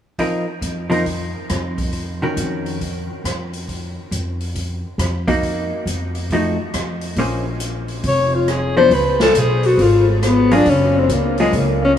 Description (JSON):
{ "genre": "jazz, small-group swing and bop", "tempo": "137 BPM", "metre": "4/4", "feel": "swing 65% on 8ths", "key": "Bb minor", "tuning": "A4 = 440 Hz", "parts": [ { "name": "hollow-body jazz guitar", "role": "accompaniment", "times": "0.2-11.5 s", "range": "Eb3 to C5", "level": "-23 LUFS", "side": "equal", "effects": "none" }, { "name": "open jazz drum kit", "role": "drums", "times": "0.2-11.7 s", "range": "hi-hat, kick drum, rim click, snare drum", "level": "-27 LUFS", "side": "equal", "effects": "none" }, { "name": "upright bass", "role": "bass", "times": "0.6-12.0 s", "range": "F1 to F2", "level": "-22 LUFS", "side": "equal", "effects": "none" }, { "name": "clear alto saxophone", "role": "melody", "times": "8.1-11.9 s", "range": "Ab3 to Db5", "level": "-14 LUFS", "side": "left 2 dB", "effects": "none" } ], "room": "wet huge ambient reverb, RT60 9.0 s", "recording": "in a vast, echoing space, small room ambience", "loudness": "-16 LUFS", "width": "side -9 dB against mid", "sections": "0.2-7.2 A section; 7.2-12.0 B section", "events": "none", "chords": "0.2 F7sus4; 1.9 Ebm7; 5.4 Ebmadd9/F; 6.3 F7b9; 7.2 Bbm9; 8.9 Db7(no3); 10.7 Gb", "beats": "| 0.19 0.63 1.06 1.50 | 1.94 2.37 2.81 3.25 | 3.68 4.12 4.55 4.99 | 5.43 5.87 6.30 6.74 | 7.17 7.61 8.05 8.48 | 8.92 9.36 9.79 10.23 | 10.67 11.10 11.54 11.98" }